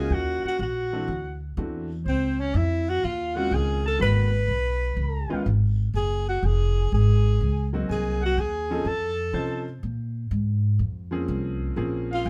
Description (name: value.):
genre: jazz, small-group swing and bop.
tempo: 123 BPM.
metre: 4/4.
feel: swing 68% on 8ths.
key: unclear.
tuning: A4 = 440 Hz.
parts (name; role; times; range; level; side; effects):
warm alto saxophone; melody; 0.0-12.3 s; C4 to Cb5; -30 LUFS; equal; none.
clear trumpet; second line; 0.0-12.3 s; C5 to Cb6; -37 LUFS; equal; none.
clear concert grand piano; accompaniment; 0.0-12.3 s; Eb3 to C5; -33 LUFS; equal; none.
upright bass; bass; 0.0-12.3 s; F1 to C3; -27 LUFS; equal; none.
room: moderate studio reverb, RT60 0.7 s.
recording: none.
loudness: -25 LUFS.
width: mono.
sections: 0.0-12.3 A section.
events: none.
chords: 0.1 Ebm7; 1.1 D9; 2.1 Dbmaj9; 4.0 Abm9; 5.0 Db7; 5.9 Gbmaj7sus2; 7.9 Cm7b5; 8.9 F7b13; 9.8 Bbm9.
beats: | 0.11 0.60 1.08 1.57 | 2.06 2.54 3.03 3.51 | 4.00 4.49 4.97 5.46 | 5.94 6.43 6.92 7.40 | 7.89 8.37 8.86 9.35 | 9.83 10.32 10.80 11.29 | 11.78 12.26.